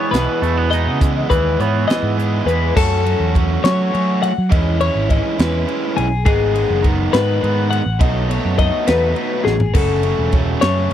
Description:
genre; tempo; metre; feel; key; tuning
math rock and midwest emo; 69 BPM (dotted quarters); 6/8; straight; unclear; A4 = 440 Hz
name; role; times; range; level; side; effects
twangy electric guitar; accompaniment; 0.0-4.5 s; E2 to D#4; -25 LUFS; right 8 dB; warbly pitch drift
twelve-string electric guitar; arpeggios; 0.0-10.9 s; G#4 to F#5; -20 LUFS; left 7 dB; none
raw garage guitar; riff; 0.0-10.9 s; B2 to G#4; -21 LUFS; right 3 dB; overdrive
picked electric bass; bass; 0.1-10.9 s; E1 to F#3; -19 LUFS; right 1 dB; none
crisp fusion drum kit; drums; 0.1-10.9 s; crash cymbal, hi-hat, kick drum, ride cymbal, snare drum, toms; -18 LUFS; right 1 dB; none
room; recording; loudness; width
little or no reverb; dry, close 1970s-style studio recording; -14 LUFS; side -10 dB against mid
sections
0.0-2.8 A section; 2.8-10.9 B section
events
drum fill 9.5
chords
0.0 Emaj7; 2.8 F#m7; 4.5 C#m9; 6.3 G#m7; 8.0 B9sus4; 9.8 F#m7

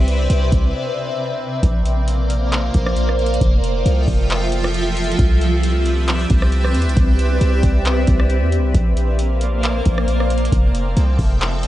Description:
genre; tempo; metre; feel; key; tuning
hip hop, atmospheric cloud-rap; 135 BPM; 4/4; half-time; C major; A4 = 440 Hz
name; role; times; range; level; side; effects
granular cloud pad; sustained chords; 0.0-11.7 s; C3 to G5; -21 LUFS; equal; built-in reverb, phaser, sidechain pumping
warm 808-style bass; bass; 0.0-11.7 s; F1 to E2; -18 LUFS; equal; none
booming analog drum machine; drums; 0.1-11.7 s; handclaps, hi-hat, kick drum, rim click; -19 LUFS; equal; none
room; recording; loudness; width
digital ambience; worn, warbling old tape, cassette tape, warbly pitch drift, nothing above 10.4 kHz; -15 LUFS; side -14 dB against mid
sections
0.0-1.6 A section; 1.6-11.7 B section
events
break 0.7-1.6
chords
0.0 Cmaj7; 1.6 Bbadd9; 3.4 Fmaj7; 5.2 Cmaj7; 8.7 Bbadd9; 10.5 Fmaj7

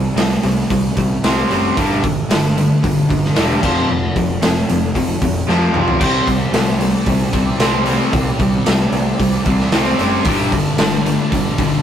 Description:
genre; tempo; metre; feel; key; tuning
hard rock; 113 BPM; 4/4; straight; unclear; A4 = 440 Hz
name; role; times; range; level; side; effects
cranked stack guitar; riff; 0.0-11.8 s; F2 to C4; -20 LUFS; right 4 dB; overdrive
crunchy overdriven guitar; riff; 0.0-11.8 s; F2 to C4; -20 LUFS; left 4 dB; none
fuzz picked electric bass; bass; 0.0-11.8 s; E1 to F2; -22 LUFS; equal; overdrive
raw garage drum kit; drums; 0.2-11.7 s; crash cymbal, hi-hat, kick drum, snare drum, toms; -18 LUFS; equal; none
percussive tonewheel organ; sustained chords; 6.0-11.8 s; G3 to D5; -28 LUFS; left 1 dB; slow rotary speaker, chorus vibrato
high-gain distorted guitar; riff; 6.0-11.8 s; G2 to C4; -26 LUFS; left 1 dB; distortion
room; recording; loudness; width
moderate studio reverb, RT60 0.6 s; rough rehearsal-room recording, warm saturation; -14 LUFS; side -9 dB against mid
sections
0.0-11.8 A section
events
drum fill 5.5-6.0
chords
0.0 C5; 1.8 G5; 3.6 F5; 6.0 C5; 10.3 G5

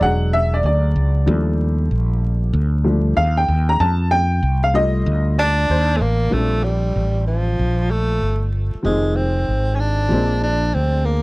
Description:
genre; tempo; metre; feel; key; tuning
hip hop, jazz-hop; 95 BPM; 4/4; swing 65% on 16ths; Bb major; A4 = 440 Hz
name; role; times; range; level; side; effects
dark upright piano; accompaniment; 0.0-11.2 s; Eb3 to Bb5; -21 LUFS; left 1 dB; none
mellow fretless electric bass; bass; 0.0-11.2 s; E1 to F2; -18 LUFS; equal; none
breathy tenor saxophone; melody; 5.4-11.2 s; F3 to D4; -21 LUFS; right 1 dB; none
room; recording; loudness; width
light reverb; vinyl crackle; -16 LUFS; side -22 dB against mid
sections
0.0-6.3 A section; 6.3-11.2 B section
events
upright piano solo 0.0-6.3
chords
0.0 E9; 1.3 Ebmaj9#11; 3.8 F7; 6.3 Bb6; 8.8 Fm7; 10.1 Bb7

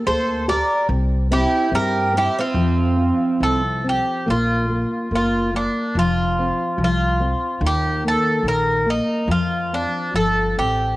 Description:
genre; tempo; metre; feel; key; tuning
fado-style ballad; 71 BPM; 2/4; rubato; F major, Bb major from 4.3 s; A4 = 437 Hz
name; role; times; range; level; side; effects
nylon-string guitar; accompaniment; 0.0-11.0 s; Eb3 to G4; -23 LUFS; left 2 dB; none
Greek bouzouki; melody; 0.1-11.0 s; D4 to D5; -21 LUFS; equal; cassette tape
picked twelve-string acoustic guitar; second line; 0.1-3.6 s; C4 to Bb4; -22 LUFS; right 2 dB; none
upright bass; bass; 0.1-11.0 s; F1 to G2; -23 LUFS; equal; none
room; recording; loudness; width
light reverb, small room ambience; home recording on cassette; -17 LUFS; side -18 dB against mid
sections
0.0-4.3 A section; 4.3-11.0 B section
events
none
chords
0.0 Gm; 0.9 C5; 2.5 F5; 4.3 Bb5; 6.0 F5; 7.6 Eb5; 9.3 Fadd9

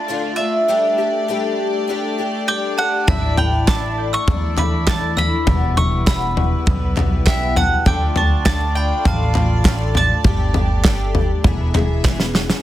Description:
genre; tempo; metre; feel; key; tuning
indie folk with a building arrangement; 100 BPM; 4/4; straight; unclear; A4 = 440 Hz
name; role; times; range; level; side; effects
mandolin; melody; 0.0-11.1 s; E5 to C#6; -22 LUFS; right 1 dB; plate reverb, analog delay
picked twelve-string acoustic guitar; accompaniment; 0.0-12.6 s; E2 to G#4; -25 LUFS; left 6 dB; analog chorus, plate reverb
warm symphonic string section; sustained chords; 0.0-12.6 s; G3 to E5; -29 LUFS; right 1 dB; plate reverb
glockenspiel with brass mallets; second line; 2.5-11.1 s; G5 to E6; -28 LUFS; right 2 dB; plate reverb
upright bass; bass; 3.1-12.5 s; E1 to E2; -22 LUFS; equal; none
natural country drum kit; drums; 3.1-12.6 s; kick drum, snare drum, toms; -17 LUFS; equal; none
group handclap; percussion; 3.7-12.2 s; none; -28 LUFS; right 8 dB; none
room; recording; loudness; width
light reverb; dense, heavily limited modern master; -15 LUFS; side -13 dB against mid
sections
0.0-12.6 A section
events
drum fill 12.0-12.6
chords
0.0 Dm; 0.7 Gsus2; 3.1 Asus4; 5.5 Emadd9; 7.9 Dm; 10.3 Gsus2; 11.4 E

